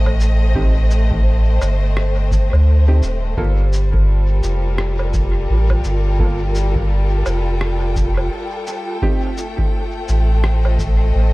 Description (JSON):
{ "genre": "ambient dub", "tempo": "85 BPM", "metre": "4/4", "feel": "swing 59% on 16ths", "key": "G minor", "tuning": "A4 = 441 Hz", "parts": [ { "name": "warm symphonic string section", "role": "sustained chords", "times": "0.0-11.3 s", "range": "G3 to G5", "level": "-24 LUFS", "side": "left 2 dB", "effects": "none" }, { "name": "soft dub sub bass", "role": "bass", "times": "0.0-11.3 s", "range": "Eb1 to D2", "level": "-15 LUFS", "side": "equal", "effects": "none" }, { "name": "electronic kick drum", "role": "drums", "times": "0.1-11.0 s", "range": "none", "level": "-21 LUFS", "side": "equal", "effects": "none" }, { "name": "electronic woodblock, shaker and rim click", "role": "drums", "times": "0.1-11.0 s", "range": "none", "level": "-30 LUFS", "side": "right 1 dB", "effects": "dub echo" }, { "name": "clear upright piano", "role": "stabs", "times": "0.6-9.3 s", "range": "Bb3 to A4", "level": "-29 LUFS", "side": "right 2 dB", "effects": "dub echo" } ], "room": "small room ambience", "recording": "dark, warm production, vinyl crackle", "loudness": "-14 LUFS", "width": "side -21 dB against mid", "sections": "0.0-11.3 A section", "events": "none", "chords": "0.0 Am7b5; 3.4 Gm7; 9.0 Am7b5", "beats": "| 0.55 1.26 1.97 2.67 | 3.38 4.08 4.79 5.50 | 6.20 6.91 7.61 8.32 | 9.03 9.73 10.44 11.14" }